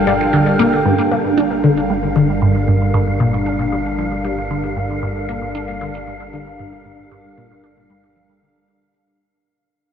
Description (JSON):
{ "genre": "ambient, sequencer-driven space music", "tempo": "115 BPM", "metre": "4/4", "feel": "straight", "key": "G minor", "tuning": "A4 = 443 Hz", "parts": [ { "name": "phased analog pad", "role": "sustained chords", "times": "0.0-9.2 s", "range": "G3 to F5", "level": "-20 LUFS", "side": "right 1 dB", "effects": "phaser, chorus" }, { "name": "analog drone", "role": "bass", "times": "0.0-9.2 s", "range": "G1", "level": "-27 LUFS", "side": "equal", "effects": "chorus" }, { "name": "wind-like tuned noise texture", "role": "texture", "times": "0.0-9.2 s", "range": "F5 to G5", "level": "-26 LUFS", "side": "equal", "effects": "built-in reverb" }, { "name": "resonant blip pluck", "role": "riff", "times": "0.1-9.0 s", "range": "G2 to D4", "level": "-17 LUFS", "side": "equal", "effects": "phaser, lush chorus, tape echo" } ], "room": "wet huge ambient reverb, RT60 8.7 s", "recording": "nothing above 10.3 kHz", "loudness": "-15 LUFS", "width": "side -8 dB against mid", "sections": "0.9-9.2 A section", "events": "fade-out on synth arpeggio sound 0.9-9.2; fade-out on synth drone 0.9-9.2; fade-out 0.9-9.2", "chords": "0.0 Gm7" }